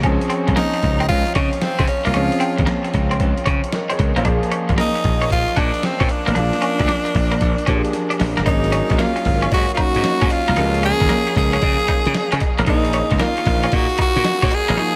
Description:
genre	R&B, new jack swing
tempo	114 BPM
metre	4/4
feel	swing 66% on 16ths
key	unclear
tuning	A4 = 440 Hz
part	warm concert grand piano	accompaniment	0.0-15.0 s	Eb3 to Eb5	-26 LUFS	equal	analog chorus
part	twelve-string electric guitar	riff	0.0-14.9 s	Bb3 to Eb4	-27 LUFS	equal	lush chorus
part	glassy slap bass	bass	0.0-14.8 s	G1 to Db3	-23 LUFS	equal	none
part	boom bap sampler-style drum kit	drums	0.0-14.8 s	hi-hat, kick drum, snare drum	-24 LUFS	equal	none
part	raspy tenor saxophone	melody	0.6-15.0 s	C4 to Ab4	-24 LUFS	equal	tape echo
part	cowbell	percussion	8.5-14.7 s	none	-37 LUFS	equal	none
room	moderate huge ambient reverb, RT60 9.4 s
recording	dreamy mix soaked in reverb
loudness	-18 LUFS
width	mono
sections	0.0-8.5 A section; 8.5-15.0 B section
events	drum fill 7.9-8.5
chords	0.0 Dbmaj7; 4.3 Bb7; 8.5 Ab9sus4; 10.6 Db6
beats	| 0.04 0.57 1.09 1.62 | 2.15 2.67 3.20 3.73 | 4.25 4.78 5.30 5.83 | 6.36 6.88 7.41 7.94 | 8.46 8.99 9.52 10.04 | 10.57 11.09 11.62 12.15 | 12.67 13.20 13.72 14.25 | 14.78

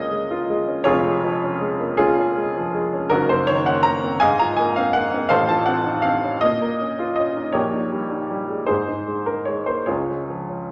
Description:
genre	classical, romantic character piece for solo piano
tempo	54 BPM (dotted quarters)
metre	6/8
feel	rubato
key	Db major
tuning	A4 = 440 Hz
part	warm upright piano	solo	0.0-10.7 s	F1 to Bb5	-21 LUFS	equal	none
room	wet recital hall reverb, RT60 1.5 s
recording	none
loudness	-21 LUFS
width	mono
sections	0.0-10.7 A section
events	none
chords	0.0 Db; 0.9 Db/F; 3.1 Ebm7/Gb; 4.2 Ab69; 5.3 F7/A; 6.4 Bbm; 7.6 Eb7/Bb; 8.7 Ab; 9.9 Db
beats	| 0.86 1.99 | 3.12 4.22 | 5.32 6.43 | 7.55 8.70 | 9.88

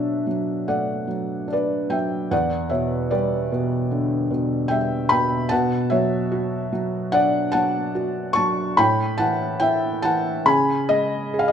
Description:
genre	classical, lyrical solo piano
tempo	74 BPM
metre	4/4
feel	rubato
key	B minor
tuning	A4 = 440 Hz
part	felt-muted upright piano	solo	0.0-11.5 s	E2 to C#6	-19 LUFS	equal	none
room	moderate recital hall reverb, RT60 1.5 s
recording	minimal, uncompressed stereo recording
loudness	-19 LUFS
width	side -8 dB against mid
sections	0.0-11.5 A section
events	none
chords	0.0 Bm7; 2.3 Em7; 5.5 Bm7; 8.8 A5; 10.5 C#5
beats	0.69 1.51 | 2.32 3.12 3.92 4.72 | 5.52 6.32 7.13 7.96 | 8.78 9.62 10.47 11.35

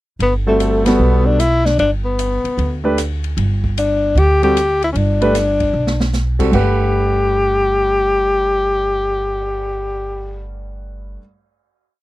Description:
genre	modal jazz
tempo	152 BPM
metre	4/4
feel	swing 66% on 8ths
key	G major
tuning	A4 = 441 Hz
part	breathy tenor saxophone	melody	0.2-10.5 s	A3 to G4	-16 LUFS	left 2 dB	none
part	upright bass	bass	0.2-11.2 s	G1 to D2	-19 LUFS	right 1 dB	none
part	open jazz drum kit	drums	0.2-9.6 s	crash cymbal, cymbal swell, hi-hat, kick drum, ride cymbal, rim click, snare drum	-26 LUFS	right 1 dB	none
part	warm concert grand piano	accompaniment	0.5-11.2 s	G2 to F#5	-19 LUFS	right 1 dB	none
room	little or no reverb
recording	dry, close 1970s-style studio recording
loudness	-14 LUFS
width	side -17 dB against mid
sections	0.2-6.5 A section; 6.5-9.7 final chord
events	band accent 0.8; drum fill 5.7-6.1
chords	0.2 Gmaj9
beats	| 0.21 0.60 1.00 1.40 | 1.79 2.19 2.58 2.98 | 3.38 3.77 4.17 4.56 | 4.95 5.35 5.74 6.14 | 6.53 6.93 7.32 7.72 | 8.11 8.51 8.90 9.30

